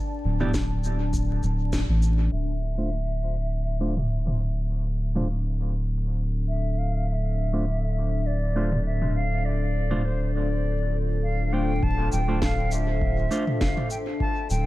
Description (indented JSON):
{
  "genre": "ambient dub",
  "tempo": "101 BPM",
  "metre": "4/4",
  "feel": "swing 54% on 16ths",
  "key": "D minor",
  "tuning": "A4 = 439 Hz",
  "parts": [
    { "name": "deep dark ambient pad", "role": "sustained chords", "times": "0.0-14.7 s", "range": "D4 to A5", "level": "-34 LUFS", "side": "left 4 dB", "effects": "chorus, built-in reverb" },
    { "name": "soft dub sub bass", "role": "bass", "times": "0.2-14.7 s", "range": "D1 to A1", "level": "-25 LUFS", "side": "equal", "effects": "none" },
    { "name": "mellow electric guitar", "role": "stabs", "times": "0.4-13.4 s", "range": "A3 to D5", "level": "-33 LUFS", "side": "right 1 dB", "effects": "low-pass filter, dub echo" },
    { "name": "organic electronic drum kit", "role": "drums", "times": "0.4-14.6 s", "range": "shaker, snare drum, toms", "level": "-32 LUFS", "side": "equal", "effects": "overdrive, dub echo" },
    { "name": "electronic kick drum", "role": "drums", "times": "0.5-1.9, 11.8-14.3 s", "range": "none", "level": "-29 LUFS", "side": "equal", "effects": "none" },
    { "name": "hollow concert flute", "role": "melody", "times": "2.3-14.7 s", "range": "C5 to A5", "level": "-32 LUFS", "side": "equal", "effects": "vintage 12-bit sampler grit, dub echo" }
  ],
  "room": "little or no reverb",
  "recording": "dark, warm production, vinyl crackle, low-pass filter",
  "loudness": "-23 LUFS",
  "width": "side -17 dB against mid",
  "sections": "0.0-2.3 A section; 2.3-11.8 B section; 11.8-14.7 C section",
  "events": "band accent 1.7; filter sweep on ambient pad 2.3-11.8; filter sweep 2.3-11.8",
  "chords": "0.0 Em7/D (rootless); 2.3 Dm7",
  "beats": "0.54 1.13 1.73 | 2.32 2.92 3.51 4.11 | 4.70 5.29 5.89 6.48 | 7.08 7.67 8.26 8.86 | 9.45 10.04 10.64 11.23 | 11.83 12.42 13.02 13.61 | 14.20"
}